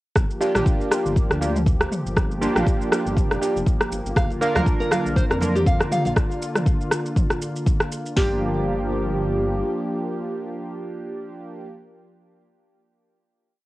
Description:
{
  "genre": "afro house",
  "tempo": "120 BPM",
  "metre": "4/4",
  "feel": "swing 56% on 16ths",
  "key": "G minor pentatonic",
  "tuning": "A4 = 440 Hz",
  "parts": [
    { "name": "warm analog pad", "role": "sustained chords", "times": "0.2-11.7 s", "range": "D3 to G4", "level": "-29 LUFS", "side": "left 1 dB", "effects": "lush chorus, sidechain pumping, cassette tape" },
    { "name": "dark detuned saw bass", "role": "bass", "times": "0.2-9.6 s", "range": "F1 to F2", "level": "-27 LUFS", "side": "equal", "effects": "sidechain pumping" },
    { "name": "afro-pop drum kit", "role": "drums", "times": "0.2-8.3 s", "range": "hi-hat, kick drum, snare drum", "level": "-20 LUFS", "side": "equal", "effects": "cassette tape" },
    { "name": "deep house drum kit", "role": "drums", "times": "0.2-8.1 s", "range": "rim click, shaker, toms", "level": "-24 LUFS", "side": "equal", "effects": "overdrive, cassette tape" },
    { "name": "warm analog keys", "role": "stabs", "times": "0.4-11.7 s", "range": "Bb3 to Bb4", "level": "-26 LUFS", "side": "right 1 dB", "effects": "chorus, phaser, sidechain pumping, cassette tape, tape echo" },
    { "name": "nylon-string guitar", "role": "arpeggios", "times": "4.2-8.4 s", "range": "G4 to F5", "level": "-27 LUFS", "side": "equal", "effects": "sidechain pumping, cassette tape, tape echo" },
    { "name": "congas", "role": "percussion", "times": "4.2-6.1 s", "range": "none", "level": "-29 LUFS", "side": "right 2 dB", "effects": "none" }
  ],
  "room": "light reverb",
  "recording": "home recording on cassette",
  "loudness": "-20 LUFS",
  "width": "side -18 dB against mid",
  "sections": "0.2-8.2 groove; 8.2-12.2 final chord",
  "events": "none",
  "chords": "0.2 Gm7; 4.2 Bb; 8.2 Gm7"
}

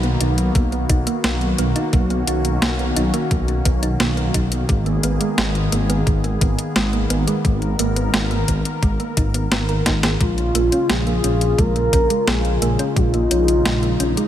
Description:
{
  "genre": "synthwave",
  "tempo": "87 BPM",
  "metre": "4/4",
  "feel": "straight",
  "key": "unclear",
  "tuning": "A4 = 439 Hz",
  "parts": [
    { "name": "warm analog pad", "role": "sustained chords", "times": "0.0-14.3 s", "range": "Db3 to Bb4", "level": "-25 LUFS", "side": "left 1 dB", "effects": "wide subtle chorus, sidechain pumping" },
    { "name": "thumb-piano-like synth pluck", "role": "arpeggios", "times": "0.0-14.3 s", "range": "Ab3 to Bb4", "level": "-26 LUFS", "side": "right 4 dB", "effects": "chorus, ping-pong delay" },
    { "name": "dark detuned saw bass", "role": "bass", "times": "0.0-14.2 s", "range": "Ab1 to B1", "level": "-20 LUFS", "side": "equal", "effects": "none" },
    { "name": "clean 12-bit digital drum machine", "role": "drums", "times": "0.0-14.3 s", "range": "hi-hat, snare drum", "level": "-23 LUFS", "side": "left 1 dB", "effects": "overdrive, small room ambience" },
    { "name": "electronic kick drum", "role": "drums", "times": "0.6-13.1 s", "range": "none", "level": "-19 LUFS", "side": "equal", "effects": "overdrive, small room ambience" },
    { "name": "expressive synth lead", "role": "melody", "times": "10.2-14.3 s", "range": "F4 to Bb4", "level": "-20 LUFS", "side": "left 1 dB", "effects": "wide subtle chorus, cassette tape, ping-pong delay" }
  ],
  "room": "light reverb, digital ambience",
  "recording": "none",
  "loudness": "-16 LUFS",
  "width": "side -11 dB against mid",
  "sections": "0.0-14.3 A section",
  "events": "drum fill 9.9-10.2",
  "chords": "0.0 Bmaj7; 4.7 Abmadd9; 10.2 Bbm7"
}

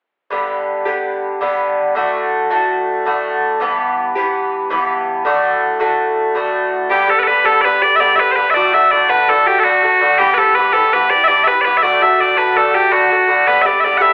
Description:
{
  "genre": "celtic folk, Celtic slip jig",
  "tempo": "109 BPM (dotted quarters)",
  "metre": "9/8",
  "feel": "straight",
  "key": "G major",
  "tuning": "A4 = 440 Hz",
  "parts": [
    { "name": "Irish bouzouki", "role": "accompaniment", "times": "0.3-14.1 s", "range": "G2 to G4", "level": "-18 LUFS", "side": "equal", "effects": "none" },
    { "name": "loud bright bagpipes", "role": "melody", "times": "6.9-14.1 s", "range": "F#4 to F#5", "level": "-14 LUFS", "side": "equal", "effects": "plate reverb" }
  ],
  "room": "wet studio reverb, RT60 0.5 s",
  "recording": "heard from further back in the room, telephone sound",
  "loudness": "-14 LUFS",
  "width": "mono",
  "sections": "0.3-6.9 A section; 6.9-14.1 B section",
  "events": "none",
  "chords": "0.3 G; 2.0 D; 3.6 Em; 5.3 D; 6.9 G; 8.5 D; 10.2 Em; 11.8 D; 13.5 G"
}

